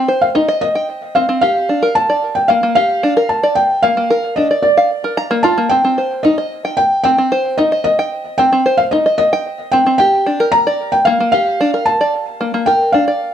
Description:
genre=folktronica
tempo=112 BPM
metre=4/4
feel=straight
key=C dorian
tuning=A4 = 440 Hz
part: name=felt-muted upright piano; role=melody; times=0.0-13.3 s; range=D5 to Bb5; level=-14 LUFS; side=equal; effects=vintage 12-bit sampler grit, tape echo
part: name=open-back banjo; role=arpeggios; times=0.0-13.3 s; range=Bb3 to Bb5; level=-16 LUFS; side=equal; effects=tape echo
room=moderate studio reverb, RT60 0.6 s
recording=none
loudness=-12 LUFS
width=side -9 dB against mid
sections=0.0-13.3 A section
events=none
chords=0.0 Cm; 1.4 Gm7; 3.6 Bb; 5.7 Cm; 10.0 Gm7; 12.1 Bb

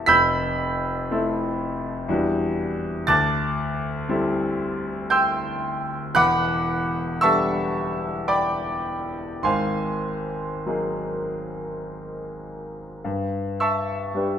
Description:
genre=classical, impressionist solo piano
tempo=49-62 BPM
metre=3/4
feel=rubato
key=unclear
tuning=A4 = 440 Hz
part: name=clear concert grand piano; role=solo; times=0.0-14.4 s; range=E1 to B6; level=-22 LUFS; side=equal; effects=none
room=wet recital hall reverb, RT60 1.4 s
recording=minimal, uncompressed stereo recording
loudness=-22 LUFS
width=side -8 dB against mid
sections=0.0-13.1 A section; 13.1-14.4 B section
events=none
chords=0.1 Fmaj7; 2.1 Em9; 3.1 D11; 6.1 Em11; 9.4 Ab9; 13.1 G6

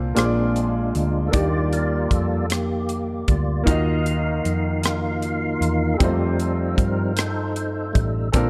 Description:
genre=slow gospel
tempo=51 BPM (dotted quarters)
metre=6/8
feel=straight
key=unclear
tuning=A4 = 440 Hz
part: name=clear grand piano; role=accompaniment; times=0.0-8.5 s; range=Bb2 to Eb5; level=-28 LUFS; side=equal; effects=none
part: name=hollow-body short-scale fingered electric bass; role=bass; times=0.0-8.5 s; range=A1 to G2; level=-26 LUFS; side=equal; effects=none
part: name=percussive tonewheel organ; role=sustained chords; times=0.2-8.5 s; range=D3 to F5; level=-27 LUFS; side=equal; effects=slow rotary speaker, overdrive, chorus vibrato
part: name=crisp fusion drum kit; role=drums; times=0.2-8.5 s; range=hi-hat, kick drum, rim click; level=-26 LUFS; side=equal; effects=none
room=light reverb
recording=dark, warm production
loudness=-22 LUFS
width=mono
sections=0.0-8.5 A section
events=tonewheel organ solo 0.0-8.5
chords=0.2 Bb7; 1.3 Ebmaj7; 3.7 Ebmadd9; 6.0 F7

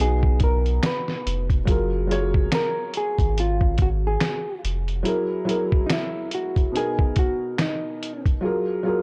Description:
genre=lo-fi hip hop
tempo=71 BPM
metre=4/4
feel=swing 59% on 16ths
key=F# major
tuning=A4 = 441 Hz
part: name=hollow-body jazz guitar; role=melody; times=0.0-8.2 s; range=D#4 to B4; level=-30 LUFS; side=equal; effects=none
part: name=dark upright piano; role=accompaniment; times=0.0-9.0 s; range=B2 to C#5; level=-29 LUFS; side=equal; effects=none
part: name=soft dub sub bass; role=bass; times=0.0-5.0 s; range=E#1 to B1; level=-26 LUFS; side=equal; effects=none
part: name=lo-fi sampler-style drum kit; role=drums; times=0.0-8.4 s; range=finger snaps, hi-hat, kick drum, snare drum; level=-25 LUFS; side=equal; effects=none
room=digital ambience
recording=dry, gritty hardware recording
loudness=-23 LUFS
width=mono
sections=0.0-9.0 A section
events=none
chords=0.0 B; 1.7 F#maj9; 5.1 F#9; 6.7 Bmaj7; 8.4 F#maj9

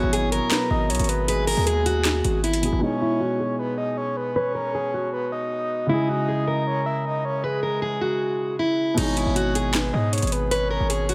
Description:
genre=hip hop, trap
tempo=156 BPM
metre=4/4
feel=half-time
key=G# minor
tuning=A4 = 440 Hz
part: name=picked plugged-in steel-string acoustic guitar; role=melody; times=0.0-11.1 s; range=D#4 to B4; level=-28 LUFS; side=equal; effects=low-pass filter
part: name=breathy flute-like synth lead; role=second line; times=0.0-11.1 s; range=G#4 to E5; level=-30 LUFS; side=equal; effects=chorus, tape echo
part: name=dark grand piano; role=accompaniment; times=0.0-11.1 s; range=B2 to G#4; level=-31 LUFS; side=equal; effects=low-pass filter
part: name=distorted 808-style bass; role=bass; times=0.0-2.8, 9.0-11.1 s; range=G#1 to G#2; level=-27 LUFS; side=equal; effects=distortion
part: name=trap drum kit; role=drums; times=0.1-2.7, 9.0-11.1 s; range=crash cymbal, handclaps, hi-hat, snare drum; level=-29 LUFS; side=equal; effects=none
room=light reverb, digital ambience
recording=none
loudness=-24 LUFS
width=mono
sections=0.0-2.8 A section; 2.8-9.0 B section; 9.0-11.1 C section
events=filter sweep 2.8-9.0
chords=0.0 Eadd9/G#; 2.8 G#m; 5.9 C#m; 9.0 G#m

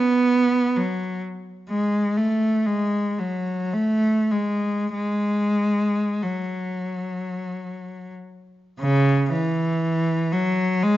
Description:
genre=classical, free, expressive piece for unaccompanied cello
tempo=36-65 BPM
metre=3/4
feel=rubato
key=F# minor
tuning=A4 = 438 Hz
part: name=rich cello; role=solo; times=0.0-11.0 s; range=C#3 to B3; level=-20 LUFS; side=equal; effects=none
room=moderate large studio reverb, RT60 1.4 s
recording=nothing above 7.5 kHz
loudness=-20 LUFS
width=side -14 dB against mid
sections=0.0-8.8 A section; 8.8-11.0 B section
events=none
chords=none

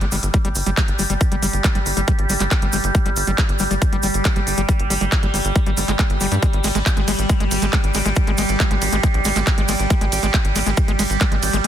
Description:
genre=psychedelic trance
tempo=138 BPM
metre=4/4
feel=straight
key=unclear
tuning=A4 = 439 Hz
part: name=overtone-sweeping drone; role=sustained chords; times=0.1-11.7 s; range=G3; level=-24 LUFS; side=right 2 dB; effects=chorus, built-in reverb, sidechain pumping
part: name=overdriven acid bass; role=riff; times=0.0-11.7 s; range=G3 to Ab3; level=-26 LUFS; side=moving between left 5 dB and right 5 dB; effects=distortion, auto-pan, sidechain pumping, ping-pong delay
part: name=tight sequencer bass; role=bass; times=0.0-11.6 s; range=G1 to G2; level=-23 LUFS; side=equal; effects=none
part: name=techno drum kit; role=drums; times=0.0-11.7 s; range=handclaps, hi-hat, ride cymbal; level=-25 LUFS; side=equal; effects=none
part: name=cabasa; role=percussion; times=0.1-11.7 s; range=none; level=-29 LUFS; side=right 3 dB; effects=none
part: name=electronic kick drum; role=drums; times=0.3-11.3 s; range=none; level=-19 LUFS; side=equal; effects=overdrive
room=light reverb, digital ambience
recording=dense, heavily limited modern master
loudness=-16 LUFS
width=side -10 dB against mid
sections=0.0-11.7 A section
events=none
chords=0.0 N.C.; 6.4 Ab5

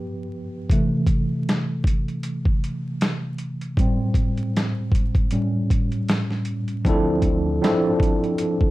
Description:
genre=lo-fi hip hop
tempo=78 BPM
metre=4/4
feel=swing 56% on 16ths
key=D minor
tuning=A4 = 439 Hz
part: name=tine electric piano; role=accompaniment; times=0.0-8.7 s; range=G2 to A4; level=-23 LUFS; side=equal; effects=medium stereo tremolo, cassette tape, low-pass filter, plate reverb
part: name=boom bap sampler-style drum kit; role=drums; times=0.7-8.7 s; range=hi-hat, kick drum, snare drum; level=-21 LUFS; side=equal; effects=overdrive
part: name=upright bass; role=bass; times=6.9-8.6 s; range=D2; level=-26 LUFS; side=equal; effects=none
room=moderate studio reverb, RT60 0.7 s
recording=dark, warm production, vinyl crackle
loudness=-20 LUFS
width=side -17 dB against mid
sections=0.0-6.8 A section; 6.8-8.7 B section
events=tine electric piano solo 0.0-6.8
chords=0.0 G7; 0.7 C6; 3.8 Am7; 5.3 A7; 6.8 Dm9

